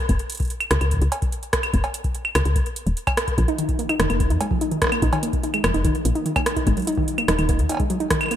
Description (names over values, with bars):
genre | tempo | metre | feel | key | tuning
IDM | 146 BPM | 4/4 | straight | unclear | A4 = 441 Hz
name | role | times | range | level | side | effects
woody FM bass | bass | 0.1-7.7 s | Eb1 to F2 | -21 LUFS | left 1 dB | none
booming analog drum machine | drums | 0.1-8.4 s | claves, cowbell, hi-hat, rim click | -24 LUFS | right 1 dB | gated reverb, ping-pong delay
electronic kick drum | drums | 0.1-8.2 s | none | -24 LUFS | left 1 dB | none
soft round pluck | arpeggios | 3.4-8.4 s | Eb3 to Eb4 | -24 LUFS | right 1 dB | chorus, digital delay, shimmer reverb
room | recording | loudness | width
moderate lush hall reverb, RT60 1.9 s, digital ambience | bright 1980s-style digital production | -19 LUFS | side -10 dB against mid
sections
0.0-8.4 A section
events
none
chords
0.1 N.C.; 3.4 Bb5; 6.7 Ab5